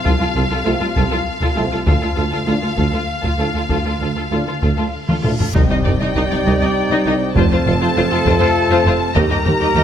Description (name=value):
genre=cinematic, epic orchestral film score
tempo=66 BPM (dotted quarters)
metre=6/8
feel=straight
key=C dorian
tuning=A4 = 436 Hz
part: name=clear symphonic violin section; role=melody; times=0.0-9.8 s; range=F5 to Bb5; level=-24 LUFS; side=left 4 dB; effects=none
part: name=rich symphonic viola section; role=accompaniment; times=0.0-9.8 s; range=Eb4 to G4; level=-24 LUFS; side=equal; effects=none
part: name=rich symphonic violin section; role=second line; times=0.1-9.8 s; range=A4 to Eb5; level=-25 LUFS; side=left 4 dB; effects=none
part: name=rich symphonic double bass section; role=bass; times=0.1-9.8 s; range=F1 to Eb2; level=-23 LUFS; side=right 3 dB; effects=none
part: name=warm symphonic cello section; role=bass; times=0.1-9.8 s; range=C2 to F2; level=-23 LUFS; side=right 2 dB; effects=none
part: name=warm tuba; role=bass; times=0.1-9.8 s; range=F1 to Eb2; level=-26 LUFS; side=right 3 dB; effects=none
part: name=taiko ensemble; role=drums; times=0.1-9.7 s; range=none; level=-21 LUFS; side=left 1 dB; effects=none
part: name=dark trombone section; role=sustained chords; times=0.6-9.8 s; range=A2 to A3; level=-25 LUFS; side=right 4 dB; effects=none
part: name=mellow French horn section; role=sustained chords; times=0.7-9.8 s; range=Bb3 to G4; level=-26 LUFS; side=left 3 dB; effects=none
part: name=reverse cymbal and impact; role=sound effects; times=5.1-7.4 s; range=none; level=-28 LUFS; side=left 1 dB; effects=none
part: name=warm trumpet section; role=stabs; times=5.6-9.8 s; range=A4 to D5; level=-22 LUFS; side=equal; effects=none
part: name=timpani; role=percussion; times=5.6-6.4 s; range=C3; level=-24 LUFS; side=left 2 dB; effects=none
room=moderate concert hall reverb, RT60 2.0 s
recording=none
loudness=-14 LUFS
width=side -9 dB against mid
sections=0.0-5.5 A section; 5.5-9.8 B section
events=drum fill 5.1-5.5; reverse cymbal 5.1-5.5; impact 5.5-7.4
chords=0.0 F/C; 1.9 Dm; 5.5 Cmadd9; 7.4 F; 9.2 Eb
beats=| 0.05 0.96 | 1.86 2.77 | 3.69 4.62 | 5.55 6.46 | 7.36 8.26 | 9.16